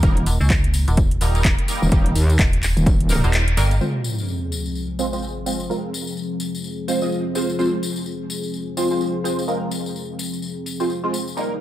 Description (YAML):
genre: bass house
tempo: 127 BPM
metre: 4/4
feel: swing 59% on 16ths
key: F minor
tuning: A4 = 443 Hz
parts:
  - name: dark analog pad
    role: sustained chords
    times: 0.0-11.6 s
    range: Eb3 to Ab4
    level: -29 LUFS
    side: left 2 dB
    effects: chorus, sidechain pumping
  - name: band-passed chord stab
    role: stabs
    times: 0.0-11.5 s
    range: G3 to Eb5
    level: -24 LUFS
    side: right 1 dB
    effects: phaser, ensemble chorus, cassette tape, sidechain pumping, tape echo
  - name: metallic wobble bass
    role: bass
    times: 0.0-3.2 s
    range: Eb1 to Eb2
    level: -18 LUFS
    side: equal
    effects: chorus, overdrive, sidechain pumping
  - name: electronic kick drum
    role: drums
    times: 0.0-3.0 s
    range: none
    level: -19 LUFS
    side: equal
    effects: overdrive
  - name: house drum kit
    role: drums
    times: 0.0-11.2 s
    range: handclaps, hi-hat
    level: -26 LUFS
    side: equal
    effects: overdrive, low-pass filter on hats, low-pass filter on snare, low-pass filter on room
  - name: tambourine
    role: percussion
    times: 0.0-11.5 s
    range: none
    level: -32 LUFS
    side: left 5 dB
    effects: none
  - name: metallic FM bass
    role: bass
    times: 0.3-3.8 s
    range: Eb1 to Db2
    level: -18 LUFS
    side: equal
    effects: overdrive, sidechain pumping
  - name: sub drop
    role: sound effects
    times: 3.8-5.7 s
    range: none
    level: -27 LUFS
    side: equal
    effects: none
room: light reverb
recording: none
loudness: -19 LUFS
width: side -13 dB against mid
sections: 0.0-3.8 A section; 3.8-11.6 B section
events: drop 0.0-3.8; kick drops out 3.3-3.8; band accent 3.3; impact 3.8-5.7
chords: 0.0 Eb; 3.8 Fm